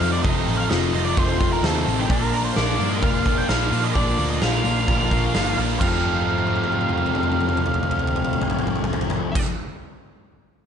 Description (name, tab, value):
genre	rock, shoegaze and dream pop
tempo	130 BPM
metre	4/4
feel	straight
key	F mixolydian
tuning	A4 = 440 Hz
part	octave-fuzz lead guitar	melody	0.0-9.4 s	G4 to G5	-27 LUFS	right 1 dB	distortion, slapback echo
part	electric guitar at the edge of break-up	arpeggios	0.0-9.5 s	F4 to F5	-31 LUFS	left 8 dB	lush chorus, slapback echo
part	biting overdriven guitar	riff	0.0-9.5 s	F2 to A4	-28 LUFS	right 13 dB	reverse reverb
part	biting overdriven guitar	riff	0.0-9.5 s	F2 to F4	-29 LUFS	right 1 dB	none
part	thick fuzz guitar	riff	0.0-9.5 s	F2 to Bb3	-27 LUFS	left 9 dB	distortion, analog chorus
part	vintage muted picked electric bass	bass	0.0-9.4 s	F1 to Bb2	-25 LUFS	right 1 dB	none
part	huge arena drum kit	drums	0.0-9.5 s	crash cymbal, hi-hat, kick drum, snare drum, toms	-24 LUFS	right 1 dB	none
room	small room ambience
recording	dark, warm production, nothing above 10.5 kHz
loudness	-19 LUFS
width	side -8 dB against mid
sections	0.0-5.8 A section; 5.8-9.5 B section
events	drum fill 6.0-9.4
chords	0.0 F7; 2.1 Bb; 5.8 F7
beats	| 0.25 0.71 1.17 1.64 | 2.10 2.56 3.03 3.49 | 3.96 4.42 4.88 5.34 | 5.81 6.27 6.73 7.19 | 7.66 8.12 8.58 9.04